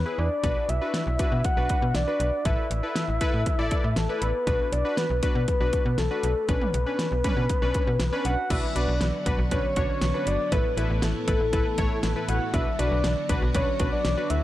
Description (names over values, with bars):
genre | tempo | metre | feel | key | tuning
synth-pop | 119 BPM | 4/4 | straight | B minor | A4 = 439 Hz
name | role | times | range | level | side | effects
soft octave-layered synth lead | melody | 0.0-14.4 s | A4 to F#5 | -28 LUFS | left 1 dB | chorus, dub echo
slap-like FM bass | bass | 0.0-14.4 s | G1 to B2 | -27 LUFS | equal | none
warm analog keys | accompaniment | 0.1-14.4 s | C#4 to D5 | -31 LUFS | left 1 dB | chorus, dub echo
pop drum kit | drums | 0.4-14.4 s | crash cymbal, hi-hat, kick drum, snare drum, toms | -28 LUFS | equal | none
string machine, full ensemble | sustained chords | 8.5-14.4 s | A2 to F#4 | -34 LUFS | equal | ensemble chorus
room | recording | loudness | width
light reverb | echo-heavy mix | -23 LUFS | side -14 dB against mid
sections
0.0-8.5 A section; 8.5-14.4 B section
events
none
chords
0.4 Bm; 2.5 Asus2; 4.5 Bm; 6.5 Bmadd9; 8.5 Bm; 10.5 Asus2; 12.5 Bm